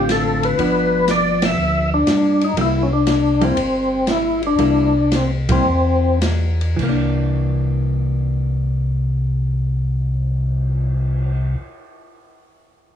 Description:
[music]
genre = soul jazz organ trio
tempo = 102-121 BPM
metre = 4/4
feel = swing 69% on 8ths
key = C mixolydian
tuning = A4 = 441 Hz
[part]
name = percussive tonewheel organ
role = melody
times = 0.0-6.2 s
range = C4 to E5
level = -17 LUFS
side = left 2 dB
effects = slow rotary speaker, overdrive, chorus vibrato
[part]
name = hollow-body jazz guitar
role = accompaniment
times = 0.0-11.7 s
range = D3 to F4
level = -22 LUFS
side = right 2 dB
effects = none
[part]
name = mellow tonewheel organ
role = bass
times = 0.0-11.6 s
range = G1 to G2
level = -20 LUFS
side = left 1 dB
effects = slow rotary speaker
[part]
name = open jazz drum kit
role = drums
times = 0.1-11.4 s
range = crash cymbal, cymbal swell, hi-hat, kick drum, ride cymbal, snare drum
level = -25 LUFS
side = left 1 dB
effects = none
[sound]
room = light reverb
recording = small room ambience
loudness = -16 LUFS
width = side -9 dB against mid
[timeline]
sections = 0.0-6.8 A section; 6.8-11.5 B section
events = band accent 1.3, 5.4; slowing down 2.6-6.8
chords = 0.0 Dm7; 0.6 G7; 2.6 C7; 6.8 C9

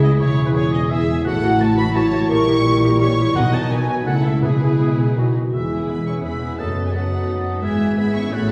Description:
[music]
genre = classical, dramatic, fast romantic movement for symphony orchestra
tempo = 171 BPM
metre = 3/4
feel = straight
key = E major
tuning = A4 = 440 Hz
[part]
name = warm symphonic violin section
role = melody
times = 0.0-8.5 s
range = B4 to C#6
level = -32 LUFS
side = equal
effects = none
[part]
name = bright concert flute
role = second line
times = 0.0-8.5 s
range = B4 to A6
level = -34 LUFS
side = equal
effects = none
[part]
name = warm clarinet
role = second line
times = 0.0-8.5 s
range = F#4 to B4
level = -32 LUFS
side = equal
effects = none
[part]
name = warm oboe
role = second line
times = 0.0-8.5 s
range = B4 to C#6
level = -32 LUFS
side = equal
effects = none
[part]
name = warm symphonic violin section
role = second line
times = 0.0-8.5 s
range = E4 to E5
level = -32 LUFS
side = equal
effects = none
[part]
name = mellow bassoon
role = accompaniment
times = 0.0-8.5 s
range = D#3 to A3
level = -32 LUFS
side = equal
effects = none
[part]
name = warm symphonic viola section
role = accompaniment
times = 0.0-8.5 s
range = F#3 to F#4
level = -32 LUFS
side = equal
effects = none
[part]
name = warm French horn section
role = sustained chords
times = 0.0-8.5 s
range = E3 to E4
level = -25 LUFS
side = equal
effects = none
[part]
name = concert harp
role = arpeggios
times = 0.0-8.5 s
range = E2 to D#5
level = -25 LUFS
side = equal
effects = none
[part]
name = dark symphonic cello section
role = bass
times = 0.0-8.5 s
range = E2 to C#3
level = -27 LUFS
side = equal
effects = none
[part]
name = warm symphonic double bass section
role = bass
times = 0.0-8.5 s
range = E1 to C#2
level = -27 LUFS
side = equal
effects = none
[part]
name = timpani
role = percussion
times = 3.4-4.9 s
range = B2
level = -28 LUFS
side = equal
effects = none
[sound]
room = wet recital hall reverb, RT60 1.5 s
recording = heard from further back in the room, small room ambience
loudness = -18 LUFS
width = mono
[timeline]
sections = 0.0-5.5 A section; 5.5-8.5 B section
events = none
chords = 0.2 C#m/E; 1.3 F#m7/A; 2.3 A#dim7; 3.4 B; 4.1 A/C#; 4.4 E/B; 5.2 B; 5.5 E; 6.6 B7/F#; 7.6 E/G#

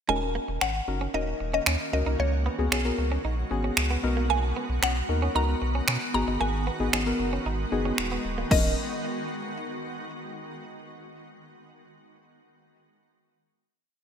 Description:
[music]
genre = dance-pop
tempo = 114 BPM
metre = 4/4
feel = straight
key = Eb minor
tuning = A4 = 440 Hz
[part]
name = mallet-like synth pluck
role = melody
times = 0.1-8.8 s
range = Db5 to A#5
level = -30 LUFS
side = left 1 dB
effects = chorus, ping-pong delay
[part]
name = deep mellow chord stab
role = accompaniment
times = 0.1-8.8 s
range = Cb4 to Bb4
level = -31 LUFS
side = left 3 dB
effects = chorus, sidechain pumping
[part]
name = shimmering ambient pad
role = sustained chords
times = 1.0-8.8 s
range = Db3 to A#4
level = -35 LUFS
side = right 1 dB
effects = chorus, built-in reverb, sidechain pumping
[part]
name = direct-recorded clean electric guitar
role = riff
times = 0.1-8.7 s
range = Ab3 to Eb4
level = -36 LUFS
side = right 6 dB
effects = wide subtle chorus
[part]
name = warm sub bass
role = bass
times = 0.1-8.8 s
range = D1 to B2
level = -28 LUFS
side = equal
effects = sidechain pumping
[part]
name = house drum kit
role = drums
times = 0.6-8.6 s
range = crash cymbal, finger snaps, kick drum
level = -28 LUFS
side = right 1 dB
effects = gated reverb
[sound]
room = moderate lush hall reverb, RT60 1.9 s, digital ambience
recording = bright 1980s-style digital production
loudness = -24 LUFS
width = side -8 dB against mid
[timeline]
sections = 0.1-8.5 verse; 8.5-10.6 final chord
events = none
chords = 0.1 Ebm7; 2.2 Db7sus4; 4.0 Bmaj7; 6.1 Abm7; 8.5 Ebm7

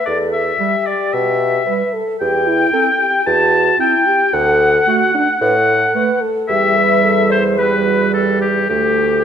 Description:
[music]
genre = quick classical-period movement for wind quintet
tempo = 112 BPM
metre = 4/4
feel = straight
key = unclear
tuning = A4 = 442 Hz
[part]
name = hollow concert flute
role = melody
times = 0.0-9.2 s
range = G4 to A5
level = -21 LUFS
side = left 6 dB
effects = none
[part]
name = clear oboe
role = second line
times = 0.0-9.2 s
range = G4 to A5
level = -16 LUFS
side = left 1 dB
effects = none
[part]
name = mellow French horn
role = accompaniment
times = 0.0-9.2 s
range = D4 to B4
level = -20 LUFS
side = right 1 dB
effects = none
[part]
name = mellow bassoon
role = bass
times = 0.1-9.2 s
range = D2 to B2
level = -20 LUFS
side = right 2 dB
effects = none
[part]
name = warm clarinet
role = accompaniment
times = 0.6-9.2 s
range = G3 to C4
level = -22 LUFS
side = right 9 dB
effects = none
[sound]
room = moderate recital hall reverb, RT60 1.6 s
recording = minimal, uncompressed stereo recording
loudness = -12 LUFS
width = side -8 dB against mid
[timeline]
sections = 0.0-9.2 A section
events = none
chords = 0.1 Em; 2.2 C/E; 4.3 D; 6.5 Em; 8.7 D5

